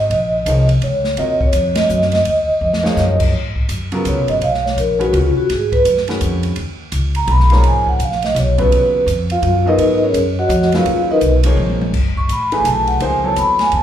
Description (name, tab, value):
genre	modal jazz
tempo	167 BPM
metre	3/4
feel	swing 63% on 8ths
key	Eb dorian, G# dorian from 3.3 s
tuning	A4 = 440 Hz
part	vibraphone with medium mallets	melody	0.0-13.8 s	C#4 to C#6	-16 LUFS	equal	slapback echo
part	upright bass	bass	0.0-13.8 s	F#1 to G#2	-18 LUFS	equal	none
part	open jazz drum kit	drums	0.1-13.8 s	crash cymbal, hi-hat, kick drum, ride cymbal, snare drum, toms	-23 LUFS	equal	none
part	clear upright piano	accompaniment	0.5-13.8 s	C3 to Eb5	-23 LUFS	left 1 dB	slapback echo
room	light reverb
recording	live gig heard through the venue's PA, club reverb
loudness	-13 LUFS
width	side -10 dB against mid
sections	0.0-3.3 A section; 3.3-11.9 B section; 11.9-13.8 B section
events	band accent 1.7; drum fill 2.6-3.0, 11.6-11.9; vibraphone solo 3.3-13.8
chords	0.0 Ebm9; 3.3 G#m11; 11.9 F#m11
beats	| 0.10 0.46 0.82 | 1.18 1.54 1.90 | 2.26 2.62 2.98 | 3.33 3.69 4.05 | 4.41 4.77 5.13 | 5.49 5.85 6.21 | 6.57 6.92 7.28 | 7.64 8.00 8.36 | 8.72 9.07 9.43 | 9.79 10.15 10.51 | 10.86 11.22 11.58 | 11.94 12.30 12.65 | 13.01 13.37 13.73